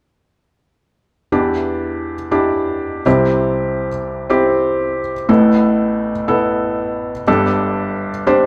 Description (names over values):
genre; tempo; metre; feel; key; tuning
pop; 121 BPM; 4/4; straight; E minor; A4 = 441 Hz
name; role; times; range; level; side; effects
felt-muted upright piano; accompaniment; 1.3-8.5 s; G1 to C5; -17 LUFS; equal; none
room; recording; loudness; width
wet studio reverb, RT60 0.8 s; band playing live in one room; -17 LUFS; mono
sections
1.3-8.5 A section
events
felt piano fill 8.3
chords
1.3 Em7; 3.1 C; 5.3 Asus2; 7.3 Gsus2